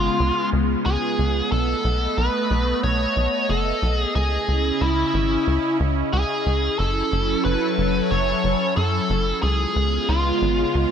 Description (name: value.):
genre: synthwave.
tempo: 91 BPM.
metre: 4/4.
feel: straight.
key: unclear.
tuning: A4 = 438 Hz.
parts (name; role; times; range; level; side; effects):
biting lead guitar; melody; 0.0-10.9 s; E4 to C#5; -23 LUFS; equal; overdrive, ping-pong delay.
phased analog pad; sustained chords; 0.0-10.9 s; C#3 to D#5; -24 LUFS; right 1 dB; phaser, chorus.
tight sequencer bass; bass; 0.0-10.9 s; F#1 to F#2; -22 LUFS; equal; tube saturation.
room: light reverb.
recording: none.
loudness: -19 LUFS.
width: side -8 dB against mid.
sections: 0.0-10.9 A section.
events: none.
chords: 0.0 C#7; 1.5 B7; 4.2 C#madd9; 6.8 F#m7; 9.4 C#7.